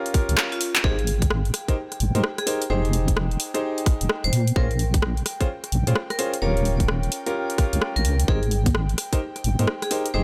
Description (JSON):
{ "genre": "UK garage, two-step garage", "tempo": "129 BPM", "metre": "4/4", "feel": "swing 64% on 16ths", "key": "Ab major", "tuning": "A4 = 440 Hz", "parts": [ { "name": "airy breathy pad", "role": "sustained chords", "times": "0.0-10.2 s", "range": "F5 to G5", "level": "-40 LUFS", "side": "equal", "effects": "chorus, sidechain pumping" }, { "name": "clear grand piano", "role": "stabs", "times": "0.0-10.2 s", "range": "Db4 to C5", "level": "-30 LUFS", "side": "equal", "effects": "dub echo" }, { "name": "electronic kick drum", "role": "drums", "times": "0.1-9.2 s", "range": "none", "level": "-23 LUFS", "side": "equal", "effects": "small room reverb" }, { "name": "punchy analog drum machine", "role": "drums", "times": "0.1-10.1 s", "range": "congas, handclaps, hi-hat, rim click", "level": "-28 LUFS", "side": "equal", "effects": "overdrive, small room reverb" }, { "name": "deep soft wobble bass", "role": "bass", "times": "0.3-10.2 s", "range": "Eb1 to Bb2", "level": "-24 LUFS", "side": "equal", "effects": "chorus" }, { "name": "vibraphone with hard mallets", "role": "melody", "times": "0.5-10.2 s", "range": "F4 to Db5", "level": "-34 LUFS", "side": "equal", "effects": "delay" } ], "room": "little or no reverb", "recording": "none", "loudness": "-23 LUFS", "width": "mono", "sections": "0.0-10.2 A section", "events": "kick drops out 0.4-0.8; drum fill 0.4-0.8", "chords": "0.0 Eb7 (rootless); 0.8 Abmaj7; 2.7 Fm7; 4.3 Bbm7; 6.4 Eb7; 8.3 Abmaj7" }